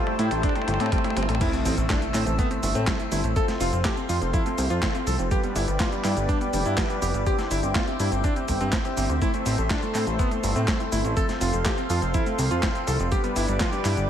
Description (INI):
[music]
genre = italo disco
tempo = 123 BPM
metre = 4/4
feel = straight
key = A minor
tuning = A4 = 440 Hz
[part]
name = clear electric grand piano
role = melody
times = 0.0-14.1 s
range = G3 to A4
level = -29 LUFS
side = equal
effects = wide subtle chorus, tape echo
[part]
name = warm analog pad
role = sustained chords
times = 0.0-14.1 s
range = A4 to E6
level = -31 LUFS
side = equal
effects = chorus
[part]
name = analog pluck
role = arpeggios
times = 0.0-14.0 s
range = E3 to G4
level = -35 LUFS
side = right 2 dB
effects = none
[part]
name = mellow synth brass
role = stabs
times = 0.0-14.1 s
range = B3 to C5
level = -33 LUFS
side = left 3 dB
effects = chorus, ping-pong delay
[part]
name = dusty soul sampler-style drum kit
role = drums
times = 0.1-14.1 s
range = cabasa, crash cymbal, handclaps, hi-hat, snare drum, toms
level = -31 LUFS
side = equal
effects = overdrive, high-pass filter on hats, studio ambience, high-pass filter on toms, high-pass filter on cymbals, high-pass filter on perc, high-pass filter on snare
[part]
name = fat analog bass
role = bass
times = 0.2-14.1 s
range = F1 to A2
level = -26 LUFS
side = equal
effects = tube saturation
[part]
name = electronic kick drum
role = drums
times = 0.4-13.7 s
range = none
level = -26 LUFS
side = equal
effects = overdrive, studio ambience
[part]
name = impact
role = sound effects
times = 1.4-3.4 s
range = none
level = -33 LUFS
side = equal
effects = none
[sound]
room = moderate plate reverb, RT60 2.3 s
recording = dreamy mix soaked in reverb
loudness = -22 LUFS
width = side -9 dB against mid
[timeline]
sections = 0.0-1.4 A section; 1.4-14.1 B section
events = drum fill 0.0-1.4; impact 1.4-3.4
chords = 0.0 Am7; 3.4 F; 5.3 G; 7.3 Cadd9/G; 9.2 Am; 11.2 F; 13.1 G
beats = 0.43 0.92 | 1.41 1.90 2.39 2.87 | 3.36 3.85 4.34 4.83 | 5.31 5.80 6.29 6.78 | 7.26 7.75 8.24 8.73 | 9.22 9.70 10.19 10.68 | 11.17 11.65 12.14 12.63 | 13.12 13.61 14.09